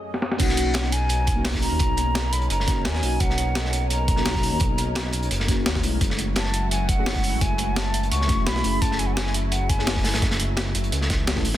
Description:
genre	liquid drum and bass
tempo	171 BPM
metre	4/4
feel	swing 53% on 16ths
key	B major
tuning	A4 = 442 Hz
part	lush unison pad	sustained chords	0.0-11.6 s	F#2 to D#5	-34 LUFS	equal	chorus, phaser, sidechain pumping
part	breakbeat sampler-style drum kit	drums	0.1-11.5 s	crash cymbal, hi-hat, snare drum	-28 LUFS	equal	low-pass filter on hats, low-pass filter on snare, low-pass filter on cymbals
part	mellow hollow silver concert flute	melody	0.4-10.2 s	F#5 to C#6	-29 LUFS	equal	digital delay
part	mellow FM electric piano	accompaniment	0.4-11.5 s	G#3 to A4	-30 LUFS	left 1 dB	chorus, phaser
part	smooth synth bass	bass	0.4-11.6 s	E1 to D#2	-25 LUFS	equal	none
part	crunchy breakbeat drum kit	drums	0.4-11.6 s	hi-hat, snare drum	-30 LUFS	equal	high-pass filter on hats, high-pass filter on snare, high-pass filter on room
part	electronic kick drum	drums	0.4-11.4 s	none	-25 LUFS	equal	none
room	studio reverb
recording	dense, heavily limited modern master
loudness	-20 LUFS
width	side -13 dB against mid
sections	0.4-11.6 A section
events	break 0.0-0.4; drum fill 0.1; drop 0.4-11.6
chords	0.4 Bmaj9; 6.0 F#m9

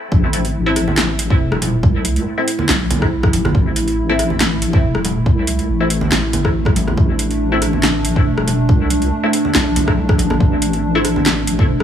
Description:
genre	deep dubstep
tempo	140 BPM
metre	4/4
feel	swing 54% on 16ths, half-time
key	A minor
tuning	A4 = 439 Hz
part	dark analog pad	sustained chords	0.1-11.8 s	A3 to E4	-21 LUFS	right 1 dB	chorus
part	deep soft wobble bass	bass	0.1-11.8 s	E1 to C2	-19 LUFS	equal	chorus, tube saturation
part	electronic kick drum	drums	0.1-11.7 s	none	-15 LUFS	equal	overdrive
part	deep house drum kit	drums	0.3-11.8 s	handclaps, hi-hat, rim click, snare drum	-19 LUFS	equal	overdrive
part	filtered dub chord stab	stabs	0.7-11.8 s	A3 to E4	-23 LUFS	left 2 dB	phaser, lush chorus, dub echo
part	congas	percussion	0.9-11.8 s	none	-24 LUFS	right 2 dB	dub echo
room	light reverb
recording	high-pass filter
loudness	-14 LUFS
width	side -9 dB against mid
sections	0.1-11.8 A section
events	drop 0.1-11.8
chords	0.1 Am

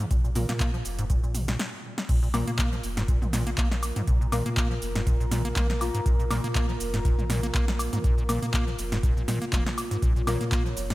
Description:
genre	acid house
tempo	121 BPM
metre	4/4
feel	swing 55% on 16ths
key	unclear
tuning	A4 = 442 Hz
part	dark analog pad	sustained chords	0.0-10.9 s	Bb3 to Db5	-36 LUFS	equal	chorus, phaser, sidechain pumping
part	acid bass, square	riff	0.0-10.9 s	Ab2 to Bb3	-31 LUFS	equal	tube saturation, cassette tape, analog delay
part	deep mellow chord stab	stabs	0.0-10.9 s	Bb3 to Bb4	-37 LUFS	left 2 dB	chorus, analog delay
part	electro analog drum machine	drums	0.0-10.9 s	crash cymbal, handclaps, hi-hat, shaker, snare drum, toms, woodblock	-31 LUFS	equal	none
part	saturated sub bass	bass	0.1-10.9 s	F1 to Bb2	-32 LUFS	equal	sidechain pumping
part	electronic kick drum	drums	0.1-10.6 s	none	-25 LUFS	equal	none
room	light reverb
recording	none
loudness	-24 LUFS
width	side -18 dB against mid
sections	0.0-2.1 A section; 2.1-10.9 B section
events	drum fill 1.6-2.1; stop 1.6-2.1; drop 2.1-10.9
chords	0.0 Bb5

